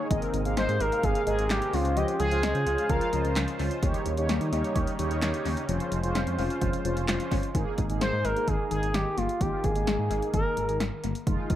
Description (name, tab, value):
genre	synth-pop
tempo	129 BPM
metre	4/4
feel	straight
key	Ab major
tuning	A4 = 441 Hz
part	mellow synth brass	accompaniment	0.0-11.6 s	Ab3 to Db5	-33 LUFS	right 1 dB	chorus
part	sweeping resonant pad	sustained chords	0.0-7.5 s	C3 to C5	-36 LUFS	right 1 dB	chorus
part	soft round pluck	arpeggios	0.0-11.6 s	Eb3 to F5	-36 LUFS	left 10 dB	chorus, analog delay
part	mellow synth brass	second line	0.1-3.2 s	Eb5 to F5	-35 LUFS	left 3 dB	chorus, analog delay
part	smooth synth bass	bass	0.1-11.6 s	F1 to Eb3	-30 LUFS	equal	none
part	punchy analog drum machine	drums	0.1-11.6 s	handclaps, hi-hat, kick drum, snare drum	-31 LUFS	equal	analog delay
part	expressive synth lead	melody	0.6-3.4, 8.0-10.8 s	F4 to C5	-28 LUFS	equal	chorus, analog delay
room	moderate spring reverb, RT60 1.7 s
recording	echo-heavy mix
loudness	-25 LUFS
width	side -12 dB against mid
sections	0.1-7.5 A section; 7.5-11.6 B section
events	none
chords	0.1 Abadd9; 1.7 Dbmaj7; 3.8 Eb7; 5.7 Dbmaj7/F; 7.5 Absus2